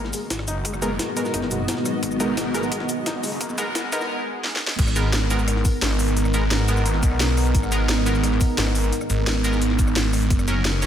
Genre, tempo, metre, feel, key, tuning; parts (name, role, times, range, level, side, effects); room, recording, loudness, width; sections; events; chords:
dark technical drum and bass; 174 BPM; 4/4; straight; G# minor; A4 = 440 Hz
deep dark ambient pad; sustained chords; 0.2-10.9 s; G#3 to C#5; -27 LUFS; right 2 dB; chorus, built-in reverb, vintage 12-bit sampler grit, sidechain pumping
snarling distorted saw bass; bass; 0.0-10.9 s; F#1 to B1; -23 LUFS; equal; distortion, sidechain pumping
jungle sampler-style drum kit; drums; 0.0-10.9 s; hi-hat, snare drum; -33 LUFS; left 1 dB
granular cloud pad; texture; 0.5-4.1 s; B3 to D#5; -30 LUFS; equal; built-in reverb, wide subtle chorus, sidechain pumping
felt-muted upright piano; arpeggios; 0.1-4.0 s; G#3 to D#4; -32 LUFS; left 3 dB; sidechain pumping, low-pass filter, ping-pong delay
drum and bass drum kit; drums; 0.1-10.9 s; cabasa, crash cymbal, hi-hat, rim click, snare drum; -27 LUFS; equal; small room ambience
electronic kick drum; drums; 0.3-10.4 s; -22 LUFS; equal; high-pass filter on kick, small room ambience
band-passed chord stab; stabs; 0.8-10.9 s; F#3 to A#4; -29 LUFS; equal; chorus, vintage 12-bit sampler grit, ping-pong delay
swell; sound effects; 4.2-4.8 s; -39 LUFS; equal
moderate lush hall reverb, RT60 2.0 s; dreamy mix soaked in reverb, high-pass filter; -19 LUFS; side -10 dB against mid
0.0-4.8 A section; 4.8-10.9 B section
build-up 0.0-4.8; filter sweep on felt piano 0.0-4.8; filter sweep on synth stab 0.0-4.8; filter sweep 0.0-4.8; drum fill 2.0-4.1, 4.4-4.8; swell 4.2-4.8; drop 4.8-10.9
0.0 G#madd9; 10.3 F#